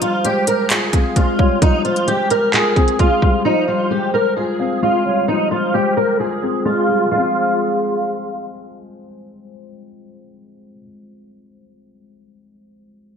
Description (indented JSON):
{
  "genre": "hip hop, trap",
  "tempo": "131 BPM",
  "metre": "4/4",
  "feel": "half-time",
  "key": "F minor",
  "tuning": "A4 = 441 Hz",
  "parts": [
    { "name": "fingerpicked swing-style acoustic guitar", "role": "melody", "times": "0.0-8.4 s", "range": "Eb4 to Bb4", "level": "-18 LUFS", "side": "equal", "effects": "ensemble chorus" },
    { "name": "hollow clarinet-like synth lead", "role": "second line", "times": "0.0-8.4 s", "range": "Ab4 to F5", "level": "-23 LUFS", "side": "right 3 dB", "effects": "chorus, ping-pong delay" },
    { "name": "dark concert grand piano", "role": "accompaniment", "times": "0.0-13.2 s", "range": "F3 to F4", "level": "-22 LUFS", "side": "left 5 dB", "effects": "analog chorus" },
    { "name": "trap drum kit", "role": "drums", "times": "0.0-3.3 s", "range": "handclaps, hi-hat, kick drum", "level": "-16 LUFS", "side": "equal", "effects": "gated reverb" }
  ],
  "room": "moderate lush hall reverb, RT60 1.8 s, digital ambience",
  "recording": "bright 1980s-style digital production, low-pass filter",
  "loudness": "-14 LUFS",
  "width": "side -7 dB against mid",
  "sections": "0.0-7.1 A section; 7.1-10.8 B section",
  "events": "filter sweep 0.0-7.1",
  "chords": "0.0 Fmadd9; 7.1 Fm",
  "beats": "0.24 0.70 1.16 | 1.62 2.08 2.53 2.99 | 3.45 3.91 4.37 4.82 | 5.28 5.74 6.20 6.66 | 7.11 7.57 8.03 8.49 | 8.95 9.40 9.86 10.32"
}